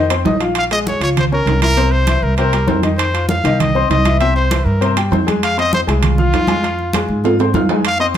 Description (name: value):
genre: latin, salsa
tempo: 198 BPM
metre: 4/4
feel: straight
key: F minor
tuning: A4 = 440 Hz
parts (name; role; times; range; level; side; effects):
- clear trumpet; melody; 0.0-8.1 s; F4 to F5; -19 LUFS; equal; plate reverb
- clear upright piano; accompaniment; 0.0-8.2 s; C3 to F6; -19 LUFS; left 4 dB; none
- upright bass; bass; 0.0-8.2 s; Bb1 to Ab2; -18 LUFS; right 1 dB; none
- congas; percussion; 0.1-8.2 s; none; -22 LUFS; right 2 dB; none
- timbales; percussion; 0.1-8.2 s; none; -21 LUFS; right 4 dB; none
room: moderate studio reverb, RT60 0.8 s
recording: none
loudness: -13 LUFS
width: side -10 dB against mid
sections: 0.0-7.8 A section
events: drum fill 7.2-7.8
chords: 0.0 F5; 0.6 Bbm7; 1.8 C7; 3.0 F5; 4.2 C7; 5.4 Fm